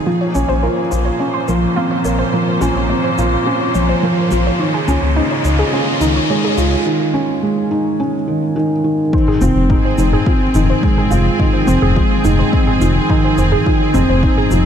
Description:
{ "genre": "piano and strings electronica", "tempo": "106 BPM", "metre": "4/4", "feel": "straight", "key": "F minor", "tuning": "A4 = 440 Hz", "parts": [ { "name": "clear symphonic string section", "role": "sustained chords", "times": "0.0-14.7 s", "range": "Bb2 to Eb5", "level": "-22 LUFS", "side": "equal", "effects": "none" }, { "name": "felt-muted upright piano", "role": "riff", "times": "0.0-14.7 s", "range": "Eb3 to Bb4", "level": "-16 LUFS", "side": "right 1 dB", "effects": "digital delay" }, { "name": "riser", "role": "sound effects", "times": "0.2-6.9 s", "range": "none", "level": "-26 LUFS", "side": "left 1 dB", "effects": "none" }, { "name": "warbly dusty pluck", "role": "arpeggios", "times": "0.1-14.6 s", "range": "Eb4 to Db5", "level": "-22 LUFS", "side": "equal", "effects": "chorus, sidechain pumping, digital delay" }, { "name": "electronic toms and shaker", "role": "drums", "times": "0.2-14.6 s", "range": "none", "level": "-25 LUFS", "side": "left 2 dB", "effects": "high-pass filter on toms, high-pass filter on perc, high-pass filter on room" }, { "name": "dark detuned saw bass", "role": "bass", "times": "0.4-14.7 s", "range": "F1 to Db2", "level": "-16 LUFS", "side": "left 1 dB", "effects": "sidechain pumping" }, { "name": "electronic kick drum", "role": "drums", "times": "9.1-14.3 s", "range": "none", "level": "-16 LUFS", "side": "left 1 dB", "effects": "overdrive" } ], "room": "moderate lush hall reverb, RT60 2.6 s", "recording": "dark, warm production", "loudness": "-13 LUFS", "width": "side -8 dB against mid", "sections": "0.0-9.1 A section; 9.1-14.7 B section", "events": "build-up 0.0-9.1; riser 0.2-6.9; break 6.9-9.1; drop 9.1-14.7", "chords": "0.1 Bbmadd9; 4.6 Dbadd9; 9.1 Fm7", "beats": "| 0.07 0.64 1.20 1.77 | 2.33 2.90 3.47 4.03 | 4.60 5.17 5.73 6.30 | 6.86 7.43 8.00 8.56 | 9.13 9.69 10.26 10.83 | 11.39 11.96 12.52 13.09 | 13.66 14.22" }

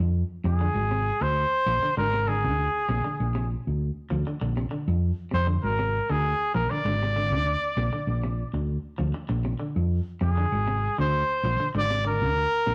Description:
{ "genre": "afrobeat", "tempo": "98 BPM", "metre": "4/4", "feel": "straight", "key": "Bb mixolydian", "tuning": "A4 = 440 Hz", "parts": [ { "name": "hollow-body short-scale fingered electric bass", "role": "bass", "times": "0.0-12.7 s", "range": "Ab1 to F2", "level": "-29 LUFS", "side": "equal", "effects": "none" }, { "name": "clear trumpet", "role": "melody", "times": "0.5-12.7 s", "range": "Ab4 to D5", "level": "-28 LUFS", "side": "equal", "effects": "none" }, { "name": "electric guitar at the edge of break-up", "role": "arpeggios", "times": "0.5-12.7 s", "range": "C3 to F3", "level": "-36 LUFS", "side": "equal", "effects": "none" } ], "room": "moderate stone room reverb, RT60 1.1 s", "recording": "rough rehearsal-room recording, warm saturation", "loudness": "-26 LUFS", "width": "mono", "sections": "0.0-12.7 A section", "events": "none", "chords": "0.0 Bb7", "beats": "0.14 0.75 1.36 | 1.97 2.58 3.19 3.80 | 4.41 5.02 5.63 6.24 | 6.85 7.46 8.07 8.69 | 9.30 9.91 10.52 11.13 | 11.74 12.36" }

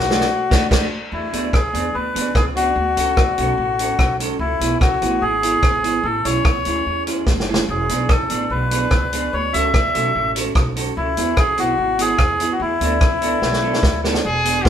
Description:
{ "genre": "ska", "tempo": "146 BPM", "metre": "4/4", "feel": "straight", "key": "E mixolydian", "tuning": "A4 = 445 Hz", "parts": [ { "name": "melodica", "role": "melody", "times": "0.0-14.0 s", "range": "E4 to E5", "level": "-20 LUFS", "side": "left 2 dB", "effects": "none" }, { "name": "upright bass", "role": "bass", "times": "0.0-14.7 s", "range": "E1 to E2", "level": "-26 LUFS", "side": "equal", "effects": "none" }, { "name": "vintage drum kit", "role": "drums", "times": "0.0-14.7 s", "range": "crash cymbal, hi-hat, kick drum, rim click, snare drum", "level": "-19 LUFS", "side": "equal", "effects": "none" }, { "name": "clean electric guitar", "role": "accompaniment", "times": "0.1-14.6 s", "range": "A3 to A4", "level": "-24 LUFS", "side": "right 4 dB", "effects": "vibrato effect, tape echo" }, { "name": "brilliant trumpet", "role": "melody", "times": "14.3-14.7 s", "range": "E4 to G#4", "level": "-18 LUFS", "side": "equal", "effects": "none" } ], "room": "moderate studio reverb, RT60 0.7 s", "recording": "band playing live in one room", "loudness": "-16 LUFS", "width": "side -9 dB against mid", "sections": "0.0-1.1 A section; 1.1-14.2 B section", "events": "drum fill 0.0-1.1, 7.3-7.7, 13.4-14.2; band accent 0.3-1.1", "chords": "0.0 D; 1.1 E7; 2.8 Dmaj7; 4.4 C#m7; 6.0 Amaj7 (rootless); 7.7 E7 (rootless); 9.3 Dmaj7; 11.0 C#m7; 12.6 E7sus4", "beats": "0.30 0.71 | 1.12 1.53 1.94 2.35 | 2.76 3.17 3.58 3.99 | 4.40 4.81 5.22 5.63 | 6.04 6.45 6.86 7.27 | 7.68 8.09 8.50 8.91 | 9.32 9.73 10.14 10.55 | 10.96 11.37 11.78 12.19 | 12.60 13.01 13.42 13.83 | 14.24 14.65" }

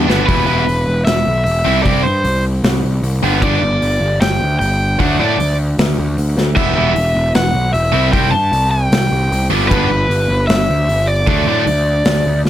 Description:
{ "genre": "punk rock", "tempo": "153 BPM", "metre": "4/4", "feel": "straight", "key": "G major", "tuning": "A4 = 439 Hz", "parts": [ { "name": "tight distorted guitar", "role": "riff", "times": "0.0-11.6 s", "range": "G2 to E4", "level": "-16 LUFS", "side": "right 1 dB", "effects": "distortion" }, { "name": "fuzz picked electric bass", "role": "bass", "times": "0.0-12.5 s", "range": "E1 to A2", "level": "-16 LUFS", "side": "equal", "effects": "overdrive" }, { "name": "big rock drum kit", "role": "drums", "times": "0.1-12.5 s", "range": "crash cymbal, hi-hat, kick drum, snare drum", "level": "-20 LUFS", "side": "left 1 dB", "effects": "none" }, { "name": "overdriven electric guitar", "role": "melody", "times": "0.3-12.4 s", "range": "B4 to A5", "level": "-17 LUFS", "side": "equal", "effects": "none" } ], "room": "light reverb", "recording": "none", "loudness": "-12 LUFS", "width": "side -12 dB against mid", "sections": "0.3-12.5 A section", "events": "drum fill 0.0, 6.4; half time 0.3-12.5", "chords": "0.3 Em; 1.7 C; 3.2 G; 5.0 D; 6.6 Em; 7.9 C; 9.5 G; 11.3 D", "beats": "| 0.29 0.68 1.07 1.46 | 1.85 2.25 2.64 3.03 | 3.42 3.82 4.21 4.60 | 5.00 5.39 5.78 6.17 | 6.57 6.96 7.35 7.74 | 8.14 8.53 8.92 9.31 | 9.71 10.10 10.49 10.88 | 11.27 11.66 12.06 12.45" }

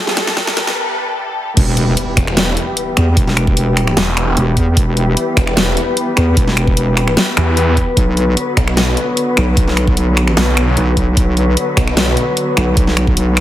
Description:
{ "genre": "heavy wobble dubstep", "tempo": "150 BPM", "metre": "4/4", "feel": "half-time", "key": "E minor", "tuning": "A4 = 440 Hz", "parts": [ { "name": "warm chamber string section", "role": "sustained chords", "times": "0.0-13.4 s", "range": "D3 to B4", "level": "-19 LUFS", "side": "left 2 dB", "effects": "sidechain pumping, low-pass filter" }, { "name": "riser and impact", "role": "sound effects", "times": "0.0-3.2 s", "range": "none", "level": "-23 LUFS", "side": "equal", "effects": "none" }, { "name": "dubstep drum kit", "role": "drums", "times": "0.1-13.4 s", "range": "crash cymbal, finger snaps, hi-hat, snare drum", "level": "-17 LUFS", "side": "equal", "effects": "none" }, { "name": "electronic kick drum", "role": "drums", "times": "0.4-13.2 s", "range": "none", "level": "-15 LUFS", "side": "equal", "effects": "none" }, { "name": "wobble bass", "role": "bass", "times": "1.6-13.4 s", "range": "E1 to E2", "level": "-14 LUFS", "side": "equal", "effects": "chorus, overdrive" }, { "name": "snarling distorted saw bass", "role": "bass", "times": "2.2-12.2 s", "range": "E1 to E2", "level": "-16 LUFS", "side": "equal", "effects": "distortion, overdrive" } ], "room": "light reverb", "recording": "heavily compressed radio sound, multiband compression, high-pass filter", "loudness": "-12 LUFS", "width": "side -13 dB against mid", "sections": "0.0-1.6 A section; 1.6-13.4 B section", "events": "build-up 0.0-1.6; drum fill 0.0-0.8; riser 0.0-0.8; filter sweep 0.0-1.6; break 0.8-1.6; drop 1.6-13.4; impact 1.6-3.2", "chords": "0.0 Em; 8.0 Bm", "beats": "0.37 0.77 1.17 | 1.57 1.97 2.37 2.77 | 3.17 3.57 3.97 4.37 | 4.77 5.17 5.57 5.97 | 6.37 6.77 7.17 7.57 | 7.97 8.37 8.77 9.17 | 9.57 9.97 10.37 10.77 | 11.17 11.57 11.97 12.37 | 12.77 13.17" }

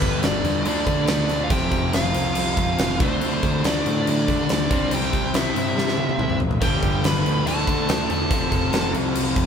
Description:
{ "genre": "hard rock", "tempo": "141 BPM", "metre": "4/4", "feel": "straight", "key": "D minor", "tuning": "A4 = 442 Hz", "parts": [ { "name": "high-gain lead guitar", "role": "melody", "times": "0.0-8.9 s", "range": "B4 to B5", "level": "-27 LUFS", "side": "equal", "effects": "distortion, digital delay" }, { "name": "bluesy overdriven lead guitar", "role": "second line", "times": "0.0-8.9 s", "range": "B3 to B4", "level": "-32 LUFS", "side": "right 2 dB", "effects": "distortion" }, { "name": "biting overdriven guitar", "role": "riff", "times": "0.0-9.5 s", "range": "F2 to D4", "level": "-30 LUFS", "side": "equal", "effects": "none" }, { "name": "crunchy overdriven guitar", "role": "riff", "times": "0.0-9.5 s", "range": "F2 to D4", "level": "-27 LUFS", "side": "left 8 dB", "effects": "phaser" }, { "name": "sludgy distorted guitar", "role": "riff", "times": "0.0-9.5 s", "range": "F2 to D4", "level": "-30 LUFS", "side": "right 10 dB", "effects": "overdrive" }, { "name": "fuzz picked electric bass", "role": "bass", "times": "0.0-9.5 s", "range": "F1 to D3", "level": "-28 LUFS", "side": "equal", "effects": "overdrive" }, { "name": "huge arena drum kit", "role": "drums", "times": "0.0-9.5 s", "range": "crash cymbal, kick drum, snare drum, toms", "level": "-23 LUFS", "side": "equal", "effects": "none" } ], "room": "light reverb", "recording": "band playing live in one room", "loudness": "-19 LUFS", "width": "side -7 dB against mid", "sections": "0.0-9.5 A section", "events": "drum fill 5.8-6.6", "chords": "0.0 G; 0.7 D5; 1.5 F5; 3.0 D5; 4.7 C; 6.6 G; 7.5 D5; 8.3 F", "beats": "0.23 0.66 1.08 | 1.51 1.94 2.36 2.79 | 3.22 3.64 4.07 4.49 | 4.92 5.34 5.77 6.19 | 6.62 7.04 7.47 7.89 | 8.31 8.74 9.16" }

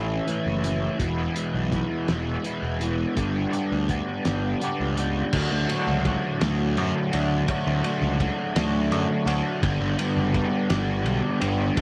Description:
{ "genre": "psychedelic rock", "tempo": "56 BPM (dotted quarters)", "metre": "6/8", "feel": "straight", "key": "unclear", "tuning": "A4 = 439 Hz", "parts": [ { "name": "crunchy overdriven guitar", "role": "riff", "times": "0.0-11.8 s", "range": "E2 to G4", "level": "-27 LUFS", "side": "equal", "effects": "rotary speaker" }, { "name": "fuzz picked electric bass", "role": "bass", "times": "0.0-11.7 s", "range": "E1 to F#2", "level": "-30 LUFS", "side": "equal", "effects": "overdrive" }, { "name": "cloth-damped thuddy drum kit", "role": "drums", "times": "0.3-11.8 s", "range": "crash cymbal, hi-hat, kick drum, ride cymbal, snare drum", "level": "-32 LUFS", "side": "equal", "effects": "none" } ], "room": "light reverb, small room ambience", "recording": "none", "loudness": "-25 LUFS", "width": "mono", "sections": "0.0-5.3 A section; 5.3-11.8 B section", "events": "none", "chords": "0.0 A; 1.0 E; 3.2 G; 5.3 D; 9.6 Gmaj7", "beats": "| 1.00 2.09 | 3.17 4.25 | 5.33 6.41 | 7.49 8.56 | 9.63 10.70 | 11.77" }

